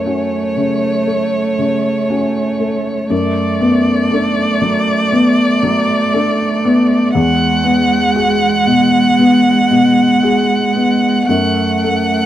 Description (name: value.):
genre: neoclassical piano and strings.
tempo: 59 BPM.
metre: 4/4.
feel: rubato.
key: F# minor.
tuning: A4 = 440 Hz.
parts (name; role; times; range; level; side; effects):
rich violin; melody; 0.0-12.3 s; C#5 to F#5; -17 LUFS; equal; plate reverb.
rich cello; second line; 0.0-12.3 s; G#3 to A3; -17 LUFS; right 5 dB; none.
felt-muted upright piano; accompaniment; 0.0-12.3 s; E2 to A4; -15 LUFS; left 2 dB; none.
room: wet booth ambience, RT60 0.2 s.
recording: heard from further back in the room.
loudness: -11 LUFS.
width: side -12 dB against mid.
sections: 0.0-12.3 A section.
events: none.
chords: 0.0 F#m; 3.1 Bm7/F#; 7.2 Eadd9; 11.3 F#m.